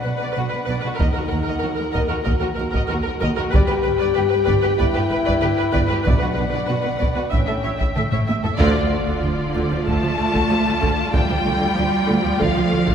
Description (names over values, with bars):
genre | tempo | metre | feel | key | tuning
cinematic, epic orchestral film score | 95 BPM | 4/4 | straight | B minor, D minor from 8.6 s | A4 = 441 Hz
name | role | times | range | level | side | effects
warm symphonic violin section | melody | 0.0-12.9 s | D5 to A5 | -28 LUFS | left 3 dB | none
rich symphonic viola section | accompaniment | 0.0-12.9 s | D3 to E5 | -25 LUFS | right 2 dB | none
dark French horn section | sustained chords | 0.0-12.6 s | A3 to A#4 | -24 LUFS | left 4 dB | none
rich chamber double bass section | bass | 0.0-12.9 s | G1 to D#2 | -26 LUFS | right 2 dB | none
warm symphonic violin section | second line | 0.1-12.9 s | F4 to E5 | -29 LUFS | left 1 dB | none
warm symphonic cello section | bass | 0.1-12.9 s | D#2 to A3 | -26 LUFS | right 2 dB | none
taiko ensemble | drums | 1.0-12.9 s | none | -23 LUFS | equal | none
timpani | percussion | 6.1-7.0 s | B2 | -30 LUFS | equal | none
warm tuba | bass | 8.6-12.8 s | D2 | -28 LUFS | right 3 dB | none
sub drop | sound effects | 8.8-11.1 s | none | -34 LUFS | equal | none
room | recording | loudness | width
wet concert hall reverb, RT60 2.3 s | recorded in a church or concert hall | -17 LUFS | side -8 dB against mid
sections
0.0-8.6 A section; 8.6-12.9 B section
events
drum fill 8.0-8.6; band accent 8.6-9.2; impact 8.6-11.1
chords
0.0 Bm; 1.0 D#m; 3.5 G; 6.1 Bm; 7.3 A7; 8.6 Dm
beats
0.36 | 0.99 1.63 2.26 2.90 | 3.53 4.16 4.80 5.43 | 6.07 6.70 7.33 7.97 | 8.60 9.23 9.87 10.50 | 11.13 11.77 12.40